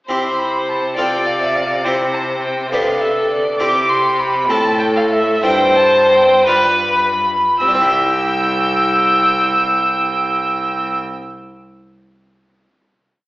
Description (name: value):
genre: classical, baroque-style sonata movement with continuo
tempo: 51-69 BPM (dotted quarters)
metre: 6/8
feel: straight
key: C major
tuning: A4 = 440 Hz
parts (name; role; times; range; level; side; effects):
- rich violin; melody; 0.1-10.9 s; G4 to G5; -17 LUFS; left 1 dB; none
- warm violin; second line; 0.1-10.9 s; D5 to E6; -17 LUFS; right 1 dB; none
- harpsichord; accompaniment; 0.1-11.2 s; G2 to E5; -22 LUFS; equal; none
- rich cello; bass; 0.1-11.0 s; C2 to C3; -24 LUFS; equal; none
room: wet recital hall reverb, RT60 1.3 s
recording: recorded in a church or concert hall, AM radio sound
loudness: -13 LUFS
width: side -18 dB against mid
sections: 0.1-7.6 A section; 7.6-12.3 final chord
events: slowing down 2.7-7.6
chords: 0.1 C; 1.0 F/C; 1.9 C; 2.7 G/C; 3.6 C; 4.5 Am; 5.4 C/G; 6.5 G7; 7.6 C